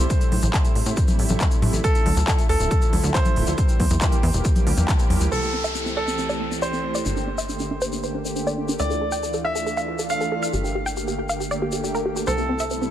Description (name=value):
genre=uplifting trance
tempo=138 BPM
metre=4/4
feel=straight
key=D minor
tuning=A4 = 440 Hz
part: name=clear grand piano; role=second line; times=0.0-12.8 s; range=A4 to F5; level=-28 LUFS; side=right 1 dB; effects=ping-pong delay
part: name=lush unison pad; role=sustained chords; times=0.0-12.9 s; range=C3 to G4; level=-29 LUFS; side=right 1 dB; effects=chorus, sidechain pumping
part: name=plucky analog bass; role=bass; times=0.0-12.9 s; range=D1 to A2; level=-26 LUFS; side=equal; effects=sidechain pumping
part: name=big-room dance drum kit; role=drums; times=0.1-5.3 s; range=congas, handclaps, hi-hat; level=-27 LUFS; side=equal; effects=studio reverb
part: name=electronic kick drum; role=drums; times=0.1-5.0 s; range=none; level=-20 LUFS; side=equal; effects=studio reverb
part: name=tube shaker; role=percussion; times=0.1-12.9 s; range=none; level=-34 LUFS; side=left 5 dB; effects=none
part: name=wide unison pluck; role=melody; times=5.3-12.9 s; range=C4 to G5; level=-27 LUFS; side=right 1 dB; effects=cassette tape, sidechain pumping, ping-pong delay
part: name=downlifter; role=sound effects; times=5.3-8.8 s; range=none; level=-32 LUFS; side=equal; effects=none
room=light reverb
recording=none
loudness=-20 LUFS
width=side -11 dB against mid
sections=0.0-5.3 A section; 5.3-12.9 B section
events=filter sweep on analog synth pad 0.0-5.3; band accent 4.9; filter sweep on synth pluck 5.3-12.9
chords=0.1 Am7; 1.8 Dmadd9; 3.6 Edim; 5.3 C6; 7.1 Gmadd9; 8.8 Dmadd9; 10.5 Gmadd9; 12.3 C6